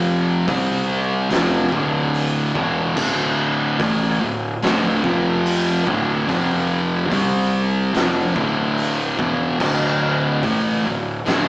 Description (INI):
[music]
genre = stoner and doom metal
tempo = 72 BPM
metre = 4/4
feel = straight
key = D dorian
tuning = A4 = 440 Hz
[part]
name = thick fuzz guitar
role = riff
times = 0.0-11.5 s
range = D2 to C4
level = -22 LUFS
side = left 1 dB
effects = distortion
[part]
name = thick fuzz guitar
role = riff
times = 0.0-11.5 s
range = D2 to C4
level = -20 LUFS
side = right 1 dB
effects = distortion
[part]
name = fuzz fingered electric bass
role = bass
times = 0.0-11.5 s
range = D1 to C2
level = -27 LUFS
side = equal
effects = overdrive
[part]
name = oversized low-tuned drum kit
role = drums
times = 0.5-11.5 s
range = crash cymbal, hi-hat, kick drum, snare drum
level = -24 LUFS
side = equal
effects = none
[sound]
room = moderate studio reverb, RT60 0.9 s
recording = band playing live in one room, small speaker sound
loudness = -17 LUFS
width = side -23 dB against mid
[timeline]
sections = 0.0-11.5 A section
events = none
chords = 0.5 C5; 1.3 Dm; 5.0 F5; 5.9 D5; 6.3 F5; 7.1 C5; 7.9 Dm